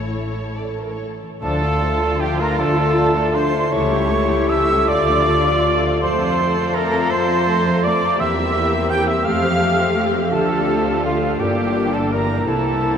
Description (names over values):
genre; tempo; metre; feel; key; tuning
classical, slow romantic movement for symphony orchestra; 43-58 BPM (dotted quarters); 6/8; rubato; D minor; A4 = 440 Hz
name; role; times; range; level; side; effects
muted studio violin section; melody; 0.0-13.0 s; F4 to G5; -29 LUFS; left 3 dB; none
muted symphonic violin section; second line; 0.0-13.0 s; C4 to D5; -29 LUFS; right 1 dB; none
muted symphonic viola section; accompaniment; 0.0-13.0 s; D3 to F4; -28 LUFS; left 2 dB; none
concert harp; arpeggios; 0.0-13.0 s; G2 to A5; -27 LUFS; right 2 dB; none
muted studio cello section; bass; 0.0-13.0 s; A2 to A4; -26 LUFS; right 1 dB; none
muted symphonic double bass section; bass; 0.0-13.0 s; G1 to F2; -24 LUFS; equal; none
dark cor anglais; second line; 1.4-13.0 s; F4 to G5; -26 LUFS; left 2 dB; none
silver concert flute; second line; 1.4-13.0 s; F5 to G6; -23 LUFS; right 2 dB; none
warm clarinet; second line; 1.4-13.0 s; C4 to G4; -30 LUFS; left 6 dB; none
mellow bassoon; accompaniment; 1.4-13.0 s; A3 to Bb3; -28 LUFS; left 5 dB; none
mellow French horn section; sustained chords; 1.4-13.0 s; A3 to G4; -26 LUFS; left 2 dB; none
warm trumpet; stabs; 1.4-13.0 s; F4 to G5; -25 LUFS; right 5 dB; none
room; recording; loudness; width
wet huge ambient reverb, RT60 7.1 s; in a vast, echoing space; -16 LUFS; side -8 dB against mid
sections
0.0-1.4 A section; 1.4-13.0 B section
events
none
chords
0.0 A; 1.4 Dm; 3.7 A7/C#; 4.9 Dm; 6.0 F; 8.2 C7/E; 9.2 F; 10.3 Dm; 11.4 Gm7; 12.5 C7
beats
0.10 | 1.42 2.59 | 3.72 4.88 | 6.02 7.11 | 8.20 9.25 | 10.32 11.40 | 12.48